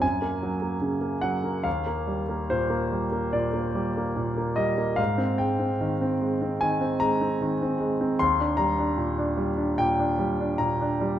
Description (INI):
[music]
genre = classical, impressionist solo piano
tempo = 74 BPM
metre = 4/4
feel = rubato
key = Eb major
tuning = A4 = 440 Hz
[part]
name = clear concert grand piano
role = solo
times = 0.0-11.2 s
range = Eb2 to C6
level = -23 LUFS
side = equal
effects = none
[sound]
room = wet recital hall reverb, RT60 1.4 s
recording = none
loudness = -23 LUFS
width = side -11 dB against mid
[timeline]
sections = 0.0-11.2 A section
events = none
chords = 0.0 Gbadd9; 1.7 Ebadd9; 5.0 Abadd9; 8.2 Ebmaj7